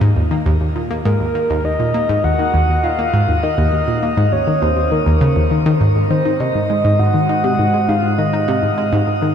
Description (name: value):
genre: ambient, sequencer-driven space music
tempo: 101 BPM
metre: 4/4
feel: straight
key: unclear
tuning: A4 = 440 Hz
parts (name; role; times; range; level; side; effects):
- analog pluck; riff; 0.0-9.3 s; Eb2 to Eb4; -16 LUFS; equal; chorus, tape echo
- soft octave-layered synth lead; melody; 1.1-9.3 s; Bb4 to Gb5; -18 LUFS; equal; chorus, tape echo
- analog drone; bass; 6.5-9.3 s; Ab2; -22 LUFS; equal; chorus, tube saturation
room: wet shimmer reverb, RT60 6.5 s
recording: dark, warm production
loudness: -14 LUFS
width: side -8 dB against mid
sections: 0.0-5.8 A section; 5.8-9.3 B section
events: none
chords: 0.0 Ebm; 5.8 Ab7